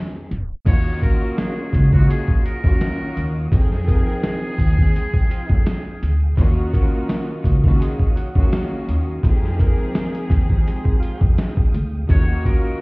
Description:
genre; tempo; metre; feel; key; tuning
hip hop, boom-bap hip-hop; 84 BPM; 4/4; swing 54% on 16ths; unclear; A4 = 440 Hz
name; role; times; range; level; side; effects
warm studio string section; accompaniment; 0.0-12.8 s; Eb3 to G5; -27 LUFS; equal; cassette tape, high-pass filter, low-pass filter
upright bass; bass; 0.3-12.6 s; Db2 to F2; -20 LUFS; equal; none
boom bap sampler-style drum kit; drums; 0.3-12.6 s; crash cymbal, hi-hat, kick drum, snare drum; -18 LUFS; equal; none
tonewheel organ; sustained chords; 0.6-12.8 s; Ab3 to Eb6; -40 LUFS; equal; overdrive, chorus vibrato, slow rotary speaker, high-pass filter, low-pass filter
trumpet with metal mute; melody; 0.7-6.3, 12.1-12.8 s; Gb4 to Db5; -32 LUFS; equal; high-pass filter, low-pass filter, tape echo
mellow saxophone section; stabs; 1.0-12.8 s; F3 to Bb4; -34 LUFS; right 2 dB; high-pass filter, low-pass filter, tape echo
room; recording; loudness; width
small room ambience; heard muffled through a wall, stone room reverb, vinyl crackle, EQ, tape stop; -16 LUFS; side -28 dB against mid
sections
0.7-12.1 A section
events
break 0.0-0.7; tape stop 0.3-0.7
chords
0.0 Fm9; 0.7 Ebm9; 3.5 Fm9; 6.4 Ebm9; 9.2 Fm9; 12.1 Ebm9

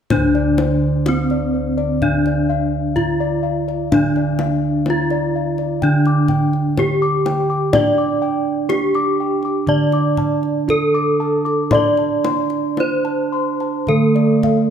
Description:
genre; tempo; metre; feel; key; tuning
Javanese gamelan; 62 BPM; 4/4; uneven beats; D slendro; A4 = 441 Hz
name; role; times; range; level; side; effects
gamelan-type bronze metallophone; melody; 0.1-14.7 s; C4-25c to D5; -20 LUFS; left 1 dB; none
gamelan-type bronze metallophone; accompaniment; 0.1-14.7 s; D3 to D4; -21 LUFS; right 6 dB; none
gamelan-type bossed gongs; arpeggios; 0.1-14.7 s; C5-25c to D6; -24 LUFS; left 7 dB; none
gamelan-type bossed gongs; bass; 0.1-14.7 s; D2 to D5; -22 LUFS; left 1 dB; none
kendang; percussion; 0.1-14.7 s; none; -25 LUFS; left 3 dB; none
room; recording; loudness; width
moderate recital hall reverb, RT60 1.7 s; none; -15 LUFS; side -8 dB against mid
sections
0.1-14.7 A section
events
none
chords
none

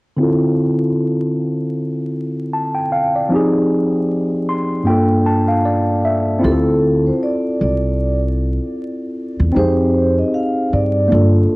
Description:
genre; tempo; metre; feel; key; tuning
hip hop; 77 BPM; 4/4; swing 58% on 16ths; unclear; A4 = 440 Hz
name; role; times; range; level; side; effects
tine electric piano; accompaniment; 0.2-11.6 s; G2 to C6; -16 LUFS; equal; low-pass filter, cassette tape
vibraphone with soft mallets; melody; 6.4-11.3 s; A4 to F5; -21 LUFS; right 1 dB; cassette tape, analog delay
upright bass; bass; 6.4-11.4 s; G1 to G2; -16 LUFS; equal; tube saturation
room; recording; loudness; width
moderate spring reverb, RT60 1.7 s, small room ambience; home recording on cassette, vinyl crackle; -14 LUFS; side -23 dB against mid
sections
0.2-6.4 A section; 6.4-11.6 B section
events
filter sweep on tine electric piano 0.2-6.4; tine electric piano fill 4.1-6.4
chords
0.2 Dm9; 3.3 Fm9; 4.9 Gm9; 6.4 Dm9; 9.5 Fm9

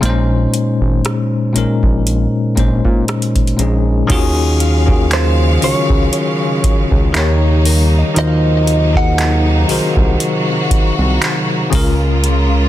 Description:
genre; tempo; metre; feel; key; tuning
contemporary R&B; 59 BPM; 4/4; swing 54% on 16ths; Eb dorian; A4 = 440 Hz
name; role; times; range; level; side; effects
bell-like tine electric piano; accompaniment; 0.0-12.7 s; Bb2 to Eb5; -16 LUFS; left 2 dB; medium stereo tremolo
fat analog bass; bass; 0.0-12.7 s; Ab1 to Bb2; -14 LUFS; equal; none
booming analog drum machine; drums; 0.0-12.5 s; crash cymbal, handclaps, hi-hat, kick drum, rim click; -17 LUFS; equal; none
rich studio string section; sustained chords; 4.1-12.7 s; C3 to F5; -21 LUFS; right 2 dB; none
glassy synth bell; texture; 4.6-9.2 s; Bb4 to F5; -31 LUFS; right 1 dB; none
direct-recorded clean electric guitar; melody; 5.1-11.0 s; C5 to Gb5; -22 LUFS; right 2 dB; lush chorus, ping-pong delay
room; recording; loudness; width
digital ambience; dense, heavily limited modern master; -12 LUFS; side -13 dB against mid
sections
0.0-4.1 A section; 4.1-12.7 B section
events
none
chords
0.0 Bbm11; 4.1 Ebm11; 7.1 Eb7; 8.2 Ab13; 11.7 Db6

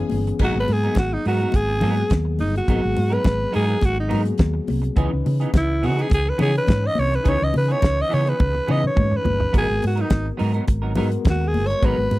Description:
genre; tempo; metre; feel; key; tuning
disco; 105 BPM; 4/4; straight; G# minor; A4 = 441 Hz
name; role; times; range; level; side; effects
mellow reed electric piano; accompaniment; 0.0-12.2 s; D#3 to C#5; -28 LUFS; left 5 dB; fast tremolo
semi-hollow electric guitar; accompaniment; 0.0-12.1 s; E3 to A#4; -29 LUFS; right 4 dB; ensemble chorus
hollow-body short-scale fingered electric bass; bass; 0.1-12.2 s; G1 to C#3; -22 LUFS; equal; none
damped 70s drum kit; drums; 0.1-12.2 s; crash cymbal, hi-hat, kick drum, snare drum, toms; -19 LUFS; equal; none
congas; percussion; 0.1-12.2 s; none; -29 LUFS; left 4 dB; none
raspy alto saxophone; melody; 0.4-12.2 s; D#4 to D#5; -23 LUFS; right 1 dB; none
room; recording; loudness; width
small room ambience; dry, close 1970s-style studio recording; -18 LUFS; side -18 dB against mid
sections
0.4-12.2 A section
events
alto saxophone solo 0.4-12.2; drum fill 8.4-9.5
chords
0.4 G#m9; 5.0 C#m9; 9.5 G#m9

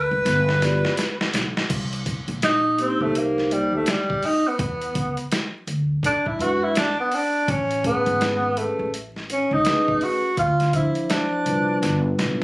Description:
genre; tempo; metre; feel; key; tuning
hip hop, jazz-hop; 83 BPM; 4/4; swing 62% on 16ths; unclear; A4 = 440 Hz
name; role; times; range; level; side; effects
breathy tenor saxophone; melody; 0.0-12.2 s; G3 to B4; -21 LUFS; equal; none
upright bass; bass; 0.0-12.4 s; G1 to F#2; -26 LUFS; equal; none
boom bap sampler-style drum kit; drums; 0.3-12.4 s; crash cymbal, hi-hat, kick drum, snare drum; -26 LUFS; equal; none
vibraphone with soft mallets; accompaniment; 0.6-12.4 s; F3 to D5; -25 LUFS; equal; none
room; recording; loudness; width
light reverb; recorded on a phone in the room, club reverb, vinyl crackle; -19 LUFS; side -22 dB against mid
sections
0.0-1.7 A section; 1.7-12.4 B section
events
drum fill 0.3-1.7, 11.8-12.4; tenor saxophone solo 1.7-12.4; vibraphone fill 12.2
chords
0.3 G7; 1.7 Cm7; 4.6 E7; 7.5 Amaj9; 10.4 Dm9; 11.8 G7

